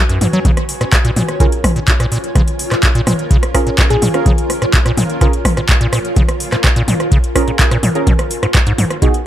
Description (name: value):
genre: acid house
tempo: 126 BPM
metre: 4/4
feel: straight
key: Bb minor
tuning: A4 = 440 Hz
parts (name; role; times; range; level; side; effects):
- acid bass, square; riff; 0.0-9.1 s; Gb2 to Gb3; -18 LUFS; equal; tube saturation, sidechain pumping, digital delay
- granular cloud pad; texture; 0.0-9.3 s; F4 to Ab5; -23 LUFS; equal; built-in reverb, sidechain pumping
- electro analog drum machine; drums; 0.1-9.2 s; handclaps, hi-hat, rim click, toms; -17 LUFS; equal; overdrive
- electronic kick drum; drums; 0.4-9.1 s; none; -14 LUFS; equal; overdrive
- deep mellow chord stab; stabs; 1.4-9.1 s; Cb4 to Bb4; -20 LUFS; right 3 dB; chorus, digital delay
- glassy wavetable pluck; melody; 3.9-4.4 s; Ab4; -22 LUFS; left 2 dB; chorus, cassette tape, ping-pong delay
room: light reverb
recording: none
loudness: -11 LUFS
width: side -12 dB against mid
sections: 0.0-9.3 A section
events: none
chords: 0.5 Bbm7; 8.1 Abm7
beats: | 0.45 0.93 1.40 1.88 | 2.35 2.83 3.31 3.78 | 4.26 4.74 5.21 5.69 | 6.16 6.64 7.12 7.59 | 8.07 8.54 9.02